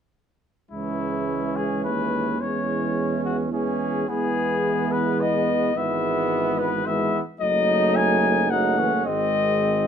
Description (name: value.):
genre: classical, brass quintet.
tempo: 108 BPM.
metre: 3/4.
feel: rubato.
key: C# minor.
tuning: A4 = 439 Hz.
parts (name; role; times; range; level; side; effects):
warm trumpet; melody; 0.7-9.9 s; E4 to G#5; -24 LUFS; left 5 dB; none.
mellow trumpet; second line; 0.7-9.9 s; B3 to D#4; -29 LUFS; right 7 dB; none.
mellow French horn; accompaniment; 0.7-9.9 s; G#3 to A3; -29 LUFS; left 2 dB; none.
warm trombone; accompaniment; 0.7-9.9 s; D#3 to F#3; -29 LUFS; right 3 dB; none.
warm tuba; bass; 0.7-9.9 s; F#1 to E2; -28 LUFS; right 4 dB; none.
room: moderate studio reverb, RT60 0.7 s.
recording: minimal, uncompressed stereo recording.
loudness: -20 LUFS.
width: side -8 dB against mid.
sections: 0.7-9.9 A section.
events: none.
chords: 0.7 C#m; 2.4 C#m/E; 5.8 E/G#; 7.4 D#dim/F#; 9.1 G#.